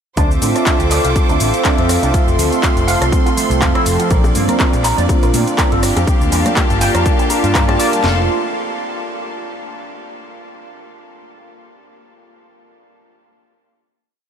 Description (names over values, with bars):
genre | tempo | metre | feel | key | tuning
nu-disco, nu disco | 122 BPM | 4/4 | swing 55% on 16ths | F major | A4 = 439 Hz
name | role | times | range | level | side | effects
warm analog pad | accompaniment | 0.3-8.2 s | F3 to A5 | -18 LUFS | right 1 dB | chorus, sidechain pumping, ping-pong delay
bright symphonic string section | sustained chords | 0.2-8.3 s | G4 to D6 | -25 LUFS | equal | sidechain pumping
electric guitar with an envelope filter | riff | 0.2-8.3 s | D3 to Bb5 | -23 LUFS | right 1 dB | wide subtle chorus, ping-pong delay
picked electric bass | bass | 0.2-8.3 s | F1 to Bb2 | -18 LUFS | equal | none
house drum kit | drums | 0.2-8.2 s | handclaps, kick drum, snare drum | -16 LUFS | equal | overdrive
house drum kit | drums | 0.2-8.0 s | handclaps, hi-hat, rim click, shaker | -22 LUFS | equal | overdrive
bongos and congas | percussion | 4.2-7.8 s | none | -28 LUFS | left 3 dB | none
room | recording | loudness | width
moderate huge ambient reverb, RT60 8.3 s | dreamy mix soaked in reverb | -12 LUFS | side -8 dB against mid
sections
0.2-8.0 drop; 8.0-10.0 final chord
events
drop 0.2-8.0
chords
0.2 Dm7; 2.1 F; 4.1 Bb; 5.8 Gm7; 8.0 F